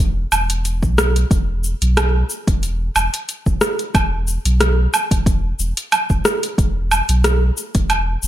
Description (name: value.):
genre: organic downtempo.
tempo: 91 BPM.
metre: 4/4.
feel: swing 54% on 16ths.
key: unclear.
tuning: A4 = 440 Hz.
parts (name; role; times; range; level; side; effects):
warm sub bass; bass; 0.0-8.3 s; E1 to B1; -18 LUFS; equal; none.
deep house drum kit; drums; 0.3-8.3 s; hi-hat, rim click, shaker, woodblock; -19 LUFS; right 1 dB; overdrive.
electronic kick drum; drums; 0.8-7.9 s; none; -17 LUFS; equal; overdrive.
room: little or no reverb.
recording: none.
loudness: -15 LUFS.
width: side -13 dB against mid.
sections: 0.0-8.3 A section.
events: none.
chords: none.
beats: 0.65 | 1.31 1.97 2.63 3.29 | 3.94 4.60 5.26 5.92 | 6.58 7.24 7.90.